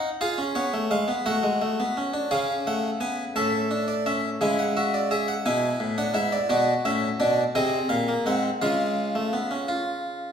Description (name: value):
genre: classical, baroque-style 4-part fugue for harpsichord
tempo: 57 BPM (dotted quarters)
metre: 6/8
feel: straight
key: unclear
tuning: A4 = 440 Hz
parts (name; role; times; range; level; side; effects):
- harpsichord; solo; 0.0-10.3 s; G#2 to G#5; -23 LUFS; equal; none
room: wet recital hall reverb, RT60 1.4 s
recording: heard from further back in the room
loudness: -22 LUFS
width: side -8 dB against mid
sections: 0.0-2.3 A section; 2.3-10.3 B section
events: none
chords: 0.2 C#7; 1.3 F#m; 2.3 C#; 3.4 Aadd11; 4.4 C#m; 5.5 Bm; 7.6 G#7; 8.6 C#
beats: | 0.22 1.27 | 2.32 3.37 | 4.42 5.46 | 6.51 7.56 | 8.62 9.68